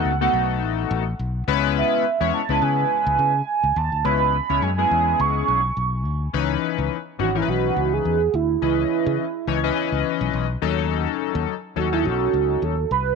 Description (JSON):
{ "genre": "early-eighties boogie funk", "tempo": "105 BPM", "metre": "4/4", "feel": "swing 56% on 16ths", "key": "C# minor", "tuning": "A4 = 443 Hz", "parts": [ { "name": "warm velvety synth lead", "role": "melody", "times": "0.0-13.2 s", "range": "E4 to C#6", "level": "-22 LUFS", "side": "right 10 dB", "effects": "chorus" }, { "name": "chorused polysynth", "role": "accompaniment", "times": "0.0-12.8 s", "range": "E3 to D#5", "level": "-24 LUFS", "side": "left 17 dB", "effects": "none" }, { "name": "fingered electric bass", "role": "bass", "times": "0.1-13.1 s", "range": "G#1 to C#3", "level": "-25 LUFS", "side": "left 1 dB", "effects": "none" } ], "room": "light reverb", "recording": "1960s-style stereo with parts hard left and right", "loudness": "-19 LUFS", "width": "side -5 dB against mid", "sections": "0.0-6.3 A section; 6.3-13.2 B section", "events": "none", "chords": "0.0 B7; 1.5 C#m7; 6.3 C#m9; 10.6 D#m7b5", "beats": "0.05 0.62 1.19 | 1.76 2.34 2.91 3.48 | 4.05 4.62 5.19 5.76 | 6.34 6.91 7.48 8.05 | 8.62 9.19 9.77 10.34 | 10.91 11.48 12.05 12.62" }